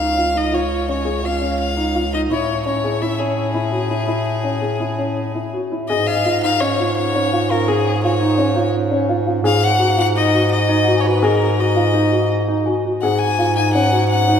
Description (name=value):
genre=contemporary instrumental, chamber music in an uneven meter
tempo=168 BPM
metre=5/4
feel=straight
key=unclear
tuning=A4 = 440 Hz
part: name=clear violin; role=melody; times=0.0-14.4 s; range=G#4 to G#5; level=-21 LUFS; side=left 3 dB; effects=none
part: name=dark grand piano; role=arpeggios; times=0.0-14.4 s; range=C#4 to G#4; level=-20 LUFS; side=equal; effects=none
part: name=clear bass clarinet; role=bass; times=0.0-14.4 s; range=C#2 to A2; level=-20 LUFS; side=equal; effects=none
part: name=celesta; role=texture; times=6.1-13.2 s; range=C#5 to G#5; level=-31 LUFS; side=equal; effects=none
room=wet church reverb, RT60 3.4 s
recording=recorded in a church or concert hall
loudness=-16 LUFS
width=side -8 dB against mid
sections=0.0-5.9 A section; 5.9-14.4 B section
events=none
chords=0.0 C#; 2.3 Amaj7; 5.9 C#add9/G#; 9.4 D#m/G#; 13.0 C#sus4/G# (rootless)